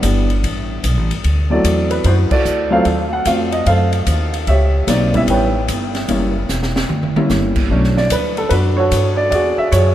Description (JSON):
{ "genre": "jazz piano trio", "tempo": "149 BPM", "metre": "4/4", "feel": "swing 66% on 8ths", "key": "A mixolydian", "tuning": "A4 = 439 Hz", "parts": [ { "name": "warm baby grand piano", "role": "melody", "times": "0.0-9.9 s", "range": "F#3 to G5", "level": "-17 LUFS", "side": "equal", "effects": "none" }, { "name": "upright bass", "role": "bass", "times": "0.0-9.9 s", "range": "E1 to G2", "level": "-17 LUFS", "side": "equal", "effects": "none" }, { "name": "open jazz drum kit", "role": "drums", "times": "0.0-9.8 s", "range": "crash cymbal, hi-hat, kick drum, ride cymbal, snare drum, toms", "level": "-23 LUFS", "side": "equal", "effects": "none" } ], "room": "moderate cathedral reverb, RT60 5.7 s", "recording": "in a vast, echoing space, lossy compression artefacts", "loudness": "-14 LUFS", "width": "side -12 dB against mid", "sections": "0.0-9.9 A section", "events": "band accent 2.3; drum fill 6.5-7.3", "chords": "0.4 Asus2; 1.2 D9; 2.9 D#dim7; 4.5 A9; 6.1 F#7b9; 7.7 Bm7; 9.3 E9" }